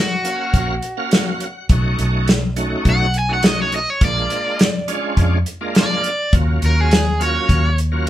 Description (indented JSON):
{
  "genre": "straight-eighth soul blues",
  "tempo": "104 BPM",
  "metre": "4/4",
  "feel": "straight",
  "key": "Eb minor",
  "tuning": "A4 = 441 Hz",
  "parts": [
    { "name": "overdriven semi-hollow guitar", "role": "melody", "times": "0.0-7.8 s", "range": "Gb4 to Ab5", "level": "-21 LUFS", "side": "equal", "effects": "none" },
    { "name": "bright tonewheel organ", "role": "accompaniment", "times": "0.2-8.1 s", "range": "Gb3 to Gb5", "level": "-24 LUFS", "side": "right 2 dB", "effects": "overdrive, chorus vibrato, slow rotary speaker" },
    { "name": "warm soul drum kit", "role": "drums", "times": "0.2-8.1 s", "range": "hi-hat, kick drum, snare drum", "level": "-17 LUFS", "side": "equal", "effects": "none" },
    { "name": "vintage muted fingered electric bass", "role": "bass", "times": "0.5-8.1 s", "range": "Bb1 to F2", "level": "-18 LUFS", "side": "equal", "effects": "none" }
  ],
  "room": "moderate studio reverb, RT60 0.6 s",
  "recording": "band playing live in one room",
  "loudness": "-15 LUFS",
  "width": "side -13 dB against mid",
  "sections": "0.0-8.1 A section",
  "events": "overdriven electric guitar solo 0.0-8.1; tonewheel organ fill 0.8-1.7",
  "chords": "0.0 Ebm7 (rootless); 1.7 B7; 4.0 Bb7#9; 6.3 Ebm7",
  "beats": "0.54 1.12 | 1.70 2.28 2.86 3.44 | 4.02 4.59 5.17 5.75 | 6.33 6.91 7.49 8.07"
}